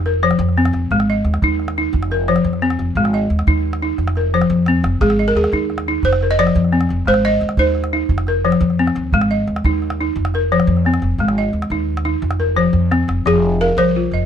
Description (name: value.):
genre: west african traditional, West African string and xylophone music.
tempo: 117 BPM (dotted quarters).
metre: 12/8.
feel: straight.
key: F dorian.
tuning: A4 = 438 Hz.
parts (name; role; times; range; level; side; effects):
upright bass; bass; 0.0-14.3 s; F1 to F2; -20 LUFS; equal; none.
balafon; arpeggios; 0.1-14.3 s; F3 to F5; -17 LUFS; left 2 dB; none.
calabash; percussion; 0.1-13.2 s; none; -22 LUFS; right 2 dB; none.
balafon; melody; 5.0-8.1, 13.3-14.3 s; Ab4 to Eb5; -17 LUFS; right 2 dB; none.
room: light reverb.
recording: dark, warm production.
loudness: -14 LUFS.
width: side -8 dB against mid.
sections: 0.0-13.3 A section.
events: drum fill 4.5-5.0, 12.4-13.3.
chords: 0.0 F5; 0.9 Ab5; 1.9 F5; 3.0 Ab5; 4.0 F5; 5.0 Ab5; 6.0 F5; 7.1 Ab; 8.1 F5; 9.1 Ab5; 10.2 F5; 11.2 Ab5; 12.2 F5; 13.3 Fm.